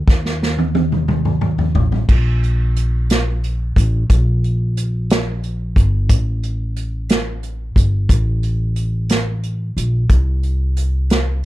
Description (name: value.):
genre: six-eight pop ballad.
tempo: 60 BPM (dotted quarters).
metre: 6/8.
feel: straight.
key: unclear.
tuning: A4 = 441 Hz.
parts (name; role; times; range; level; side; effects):
upright bass; bass; 0.0-11.4 s; G1 to Eb2; -18 LUFS; equal; none.
unplugged drum kit; drums; 0.1-11.3 s; crash cymbal, hi-hat, kick drum, snare drum, toms; -16 LUFS; equal; none.
room: little or no reverb.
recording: none.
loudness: -15 LUFS.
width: side -16 dB against mid.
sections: 0.0-2.1 A section; 2.1-11.4 A section.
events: drum fill 0.1-2.1.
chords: none.